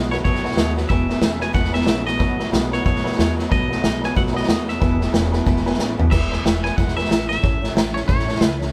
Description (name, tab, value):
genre	rockabilly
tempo	184 BPM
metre	4/4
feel	swing 60% on 8ths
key	E major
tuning	A4 = 440 Hz
part	honky-tonk upright piano	accompaniment	0.0-8.7 s	B4 to A5	-33 LUFS	equal	none
part	picked steel-string acoustic guitar	accompaniment	0.0-8.7 s	E2 to F#4	-34 LUFS	equal	none
part	electric guitar through a small old amp	riff	0.0-6.1 s	E2 to G#3	-27 LUFS	equal	none
part	upright bass	bass	0.0-8.7 s	E1 to E2	-28 LUFS	equal	none
part	twangy electric guitar	melody	0.1-8.6 s	C#5 to G#5	-29 LUFS	equal	none
part	vintage drum kit	drums	0.1-8.6 s	crash cymbal, hi-hat, kick drum, snare drum, toms	-22 LUFS	equal	none
room	light reverb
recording	band playing live in one room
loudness	-20 LUFS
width	mono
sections	0.0-6.1 A section; 6.1-8.7 A section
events	drum fill 5.8-6.1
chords	0.0 B7; 0.9 E; 2.2 B7; 4.8 E; 7.4 A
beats	0.25 0.57 | 0.90 1.23 1.55 1.88 | 2.20 2.53 2.85 3.18 | 3.51 3.83 4.16 4.49 | 4.81 5.14 5.46 5.79 | 6.12 6.45 6.77 7.10 | 7.43 7.75 8.08 8.41